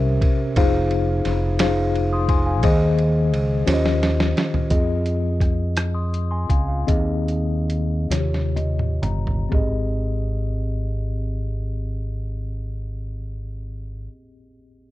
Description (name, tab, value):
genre	slow gospel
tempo	39-58 BPM (dotted quarters)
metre	6/8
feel	straight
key	Ab major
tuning	A4 = 440 Hz
part	mellow tine electric piano	accompaniment	0.0-14.9 s	Ab1 to Eb6	-24 LUFS	left 2 dB	medium stereo tremolo
part	fingered electric bass	bass	0.0-14.1 s	F1 to F2	-22 LUFS	equal	none
part	lo-fi sampler-style drum kit	drums	0.2-9.8 s	hi-hat, kick drum, ride cymbal, rim click, snare drum, toms	-22 LUFS	equal	none
room	little or no reverb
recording	dry, close 1970s-style studio recording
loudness	-19 LUFS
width	side -16 dB against mid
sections	0.0-4.7 A section; 4.7-9.5 B section; 9.5-14.9 C section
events	drum fill 3.7-4.7, 8.1-9.5; slowing down 4.7-9.5; tine electric piano fill 8.1-9.5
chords	0.0 C7b9; 0.6 Fm7; 2.6 Ab/Eb; 3.7 Eb13; 4.7 Fm7; 6.9 Ab/Eb; 8.1 Eb13; 9.5 Abmaj7